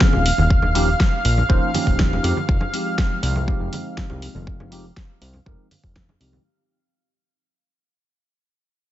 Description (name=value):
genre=nu-disco, nu disco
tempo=121 BPM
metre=4/4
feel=straight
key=F minor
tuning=A4 = 439 Hz
part: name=bell-like tine electric piano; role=accompaniment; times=0.0-6.4 s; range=F3 to C5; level=-27 LUFS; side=right 1 dB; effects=phaser, sidechain pumping, low-pass filter, digital delay
part: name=lush unison pad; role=sustained chords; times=0.0-6.5 s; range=F5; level=-25 LUFS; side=equal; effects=chorus, sidechain pumping
part: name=electronic kick drum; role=drums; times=0.0-6.1 s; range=none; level=-19 LUFS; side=equal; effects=none
part: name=pop drum kit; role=drums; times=0.0-6.3 s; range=hi-hat, snare drum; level=-26 LUFS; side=equal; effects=none
part: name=congas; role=percussion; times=0.0-6.4 s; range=none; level=-28 LUFS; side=right 3 dB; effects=none
part: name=fat analog bass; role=bass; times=0.1-6.4 s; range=Eb1 to F2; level=-21 LUFS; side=equal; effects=sidechain pumping
room=digital ambience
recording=nothing above 7.8 kHz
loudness=-17 LUFS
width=side -13 dB against mid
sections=0.0-6.5 A section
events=fade-out 0.0-6.5; filter sweep on tine electric piano 0.0-6.5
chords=0.3 Eb7; 2.2 Fm7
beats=0.01 | 0.50 1.00 1.49 1.99 | 2.49 2.98 3.48 3.97 | 4.47 4.96 5.46 5.96